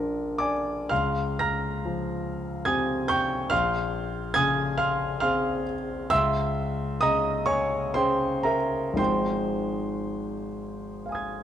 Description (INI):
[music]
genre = classical, impressionist solo piano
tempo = 56-73 BPM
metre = 3/4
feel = rubato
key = unclear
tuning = A4 = 439 Hz
[part]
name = warm grand piano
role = solo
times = 0.0-11.4 s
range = Ab1 to Bb6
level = -24 LUFS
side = equal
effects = none
[sound]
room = light reverb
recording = close, detailed microphones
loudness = -24 LUFS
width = side -10 dB against mid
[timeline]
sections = 0.0-11.4 A section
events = none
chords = 0.0 Bbadd9; 0.9 Dbmaj7#11; 3.5 Bbm9; 6.1 Dbm6; 9.0 Ab6